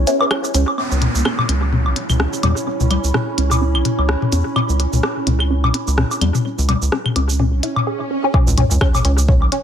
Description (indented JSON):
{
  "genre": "minimal techno",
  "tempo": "127 BPM",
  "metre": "4/4",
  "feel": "swing 57% on 16ths",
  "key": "C# minor",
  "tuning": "A4 = 439 Hz",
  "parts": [
    { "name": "rubbery square bass", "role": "bass", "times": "0.0-9.5 s", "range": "B1 to E2", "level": "-17 LUFS", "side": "equal", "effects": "sidechain pumping" },
    { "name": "swarming drone", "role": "texture", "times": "0.0-7.9 s", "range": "C#4", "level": "-30 LUFS", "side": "right 2 dB", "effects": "built-in reverb, sidechain pumping" },
    { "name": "warbly tape-like pad", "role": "texture", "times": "0.0-7.9 s", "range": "E4 to B5", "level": "-27 LUFS", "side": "right 3 dB", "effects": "chorus, built-in reverb, sidechain pumping" },
    { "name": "resonant blip pluck", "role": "riff", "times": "0.1-9.6 s", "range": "C#4 to G#4", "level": "-24 LUFS", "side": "right 1 dB", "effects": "phaser, sidechain pumping, analog delay" },
    { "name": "minimal click drum kit", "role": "drums", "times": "0.1-9.6 s", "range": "hi-hat, rim click, shaker", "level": "-24 LUFS", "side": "equal", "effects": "analog delay" },
    { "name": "electronic woodblock, claves, toms and congas", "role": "percussion", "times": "0.2-9.5 s", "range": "none", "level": "-21 LUFS", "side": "left 3 dB", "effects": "overdrive, analog delay" },
    { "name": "downlifter, swell and sub drop", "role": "sound effects", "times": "0.8-4.6, 7.6-9.6 s", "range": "none", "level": "-26 LUFS", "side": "right 1 dB", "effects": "none" },
    { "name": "electronic kick drum", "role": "drums", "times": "8.3-9.4 s", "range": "none", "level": "-16 LUFS", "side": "equal", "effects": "none" }
  ],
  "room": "light reverb, digital ambience",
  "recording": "echo-heavy mix",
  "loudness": "-15 LUFS",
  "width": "side -9 dB against mid",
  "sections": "0.8-8.3 A section; 8.3-9.6 B section",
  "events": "break 0.0-0.8, 7.9-8.3; filter sweep on synth arpeggio sound 0.8-8.3; swell 7.6-8.3; drop 8.3-9.6; impact 8.3-9.6",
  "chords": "0.0 C#m7; 8.3 N.C."
}